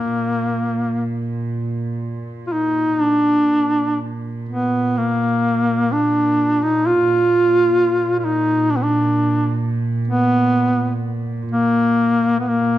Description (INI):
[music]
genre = caucasian folk, Caucasian lament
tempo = free time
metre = none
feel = none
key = Bb major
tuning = A4 = 440 Hz
[part]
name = warm duduk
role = melody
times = 0.0-12.8 s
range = Bb3 to F4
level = -16 LUFS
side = equal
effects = none
[part]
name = rich chamber string section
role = drone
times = 0.0-12.8 s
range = Bb2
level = -24 LUFS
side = right 2 dB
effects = none
[sound]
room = light reverb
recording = dark, warm production, nothing above 10.3 kHz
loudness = -16 LUFS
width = side -13 dB against mid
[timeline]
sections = 0.0-3.0 A section; 3.0-12.8 B section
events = none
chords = none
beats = free time